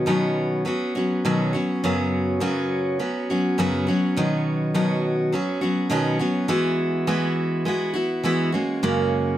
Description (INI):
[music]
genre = pop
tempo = 103 BPM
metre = 4/4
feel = swing 55% on 16ths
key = B major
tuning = A4 = 439 Hz
[part]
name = picked steel-string acoustic guitar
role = solo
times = 0.0-9.4 s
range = F#2 to F#4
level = -20 LUFS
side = equal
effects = none
[sound]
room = moderate studio reverb, RT60 0.6 s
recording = none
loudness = -20 LUFS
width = side -12 dB against mid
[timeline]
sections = 0.0-9.4 A section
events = none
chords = 0.0 Badd9; 1.8 F#sus4; 4.2 Badd9; 6.5 Eadd9; 8.5 F#add9